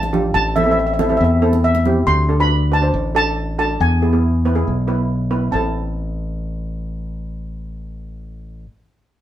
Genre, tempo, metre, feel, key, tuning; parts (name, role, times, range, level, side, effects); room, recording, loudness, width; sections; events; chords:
calypso; 139 BPM; 4/4; straight; A minor; A4 = 440 Hz
steel pan; melody; 0.0-8.6 s; E5 to C6; -19 LUFS; equal
modern bright fingered electric bass; bass; 0.0-8.6 s; A1 to E2; -19 LUFS; left 1 dB
congas; percussion; 0.0-2.0 s; -26 LUFS; right 4 dB
steel pan; accompaniment; 0.1-8.7 s; B3 to C5; -21 LUFS; right 2 dB
wet studio reverb, RT60 0.8 s; band playing live in one room; -15 LUFS; side -12 dB against mid
0.0-5.5 A section; 5.5-9.0 B section
0.4 Am7; 2.1 D; 3.8 E; 5.5 Am